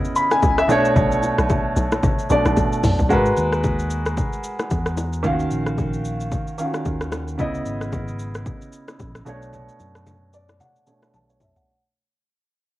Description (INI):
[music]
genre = amapiano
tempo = 112 BPM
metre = 4/4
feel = swing 58% on 16ths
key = unclear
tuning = A4 = 440 Hz
[part]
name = clear concert grand piano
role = accompaniment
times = 0.0-11.8 s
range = B2 to B5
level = -21 LUFS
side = equal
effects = low-pass filter
[part]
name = deep house drum kit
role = drums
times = 0.0-11.7 s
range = hi-hat, kick drum, rim click, shaker, toms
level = -25 LUFS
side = equal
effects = cassette tape
[part]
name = bongos and congas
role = percussion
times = 0.3-11.5 s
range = none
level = -28 LUFS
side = left 2 dB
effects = none
[part]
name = tight log drum bass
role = bass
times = 0.4-3.1 s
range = A1 to C#2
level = -23 LUFS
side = equal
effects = none
[part]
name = fingered electric bass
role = bass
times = 3.1-11.5 s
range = G#1 to G#2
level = -27 LUFS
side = equal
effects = none
[sound]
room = light reverb, digital ambience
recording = home recording on cassette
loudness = -18 LUFS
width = side -16 dB against mid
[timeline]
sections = 0.0-3.1 A section; 3.1-11.7 B section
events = drop 0.0-3.1; drum fill 2.6-3.1, 11.1-11.7; fade-out 3.1-11.7; filter sweep on grand piano 3.1-11.7; grand piano fill 10.1-11.7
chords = 0.0 C#m9; 0.7 Bm9; 3.1 G#m9; 5.2 D#m9; 7.4 C#m9; 9.3 Bm9